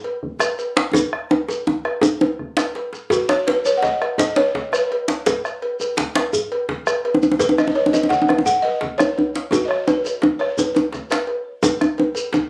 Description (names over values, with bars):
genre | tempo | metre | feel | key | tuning
west african traditional, West African drum ensemble | 112 BPM (dotted quarters) | 12/8 | straight | B major pentatonic | A4 = 440 Hz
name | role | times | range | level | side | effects
cowbell | percussion | 0.0-12.3 s | none | -28 LUFS | equal | none
djembe | percussion | 0.0-12.5 s | none | -27 LUFS | equal | none
bombo | percussion | 0.2-12.5 s | none | -29 LUFS | equal | none
shekere | percussion | 0.4-12.4 s | none | -32 LUFS | equal | none
djembe | percussion | 0.8-12.5 s | none | -20 LUFS | equal | none
balafon | melody | 3.1-11.2 s | F#4 to F#5 | -23 LUFS | equal | tape echo
room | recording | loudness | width
light reverb | recorded on a phone in the room, studio ambience | -20 LUFS | mono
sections
0.0-3.1 A section; 3.1-11.6 B section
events
speeding up 0.0-12.5; drum fill 0.9-3.1, 9.5-11.6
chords
none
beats
0.41 | 0.95 1.49 2.03 2.57 | 3.11 3.65 4.19 4.73 | 5.26 5.80 6.33 6.87 | 7.40 7.93 8.46 8.99 | 9.53 10.05 10.58 11.11 | 11.63 12.16